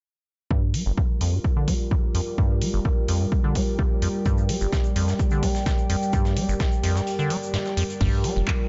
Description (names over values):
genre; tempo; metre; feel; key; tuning
acid house; 128 BPM; 4/4; straight; G minor; A4 = 440 Hz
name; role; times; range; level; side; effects
dark analog pad; sustained chords; 0.5-8.7 s; G3 to Bb4; -32 LUFS; equal; chorus, sidechain pumping
acid bass, square; riff; 0.5-8.5 s; G1 to G3; -28 LUFS; equal; tube saturation, sidechain pumping, digital delay
electronic kick drum; drums; 0.5-8.6 s; none; -25 LUFS; equal; none
warbly tape-like pad; texture; 1.8-8.7 s; G4 to G5; -36 LUFS; equal; chorus, built-in reverb, phaser, sidechain pumping
punchy analog drum machine; drums; 0.7-8.6 s; crash cymbal, handclaps, hi-hat; -36 LUFS; equal; none
dusty soul sampler-style drum kit; drums; 4.3-7.9 s; hi-hat, snare drum; -40 LUFS; equal; overdrive, high-pass filter on hats, high-pass filter on snare
tube shaker; percussion; 4.3-8.0 s; none; -46 LUFS; equal; none
round analog bass; bass; 8.0-8.4 s; F1 to G1; -27 LUFS; equal; tube saturation, sidechain pumping
room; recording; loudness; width
light reverb; dark, warm production, nothing above 7.7 kHz; -24 LUFS; mono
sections
0.5-8.0 A section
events
filter sweep on acid bass 0.5-8.0; break 7.1-8.0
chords
0.5 Gm7